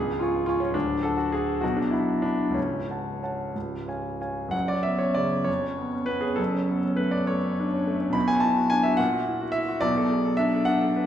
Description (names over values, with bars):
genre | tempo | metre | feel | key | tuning
classical, romantic character piece for solo piano | 60-76 BPM (dotted quarters) | 6/8 | rubato | F# minor | A4 = 439 Hz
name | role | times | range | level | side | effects
clear grand piano | solo | 0.0-11.1 s | C#1 to C#6 | -23 LUFS | equal | none
room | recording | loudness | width
wet recital hall reverb, RT60 1.5 s | heard from further back in the room | -23 LUFS | side -10 dB against mid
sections
0.0-4.5 A section; 4.5-11.1 B section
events
none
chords
0.0 C#; 0.7 D; 1.6 B5; 2.6 F#m/C#; 3.5 C#; 4.5 F#5; 5.5 C#7/E#; 6.4 F#m; 8.1 Bm; 9.0 F#7/A#; 9.8 Bm7